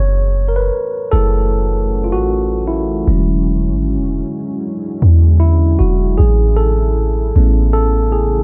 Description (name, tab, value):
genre	contemporary R&B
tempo	77 BPM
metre	4/4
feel	swing 58% on 16ths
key	F# minor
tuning	A4 = 439 Hz
part	mellow tine electric piano	accompaniment	0.0-8.4 s	D3 to C#5	-21 LUFS	equal	none
part	deep dark ambient pad	sustained chords	1.3-8.4 s	C#3 to F#4	-27 LUFS	equal	chorus, built-in reverb
part	warm 808-style bass	bass	0.0-8.4 s	E1 to E2	-16 LUFS	equal	none
room	little or no reverb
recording	dark, warm production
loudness	-15 LUFS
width	mono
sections	0.0-8.4 A section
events	tine electric piano solo 0.0-8.4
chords	0.0 F#m7; 3.1 E13; 6.2 A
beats	0.74 1.52 2.30 | 3.08 3.85 4.63 5.41 | 6.19 6.97 7.75